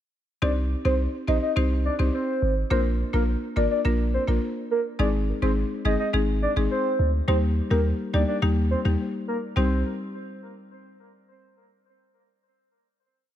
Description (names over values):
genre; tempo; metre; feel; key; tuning
dancehall; 105 BPM; 4/4; straight; C minor; A4 = 442 Hz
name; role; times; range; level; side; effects
soft octave-layered synth lead; melody; 0.4-9.8 s; Bb4 to Eb5; -28 LUFS; right 1 dB; chorus, phaser, digital delay
buzzing marimba with medium mallets; accompaniment; 0.4-9.8 s; G3 to C5; -28 LUFS; left 2 dB; none
warm 808-style bass; bass; 0.4-9.8 s; G1 to Eb2; -24 LUFS; equal; none
room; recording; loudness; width
studio reverb; none; -22 LUFS; side -11 dB against mid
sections
0.4-9.6 verse; 9.6-11.9 final chord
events
none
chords
0.4 Cm; 2.7 Bb; 5.0 Ab; 7.3 Eb; 9.6 Cm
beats
| 0.42 0.99 1.56 2.14 | 2.71 3.28 3.85 4.42 | 4.99 5.57 6.14 6.71 | 7.28 7.85 8.42 8.99 | 9.56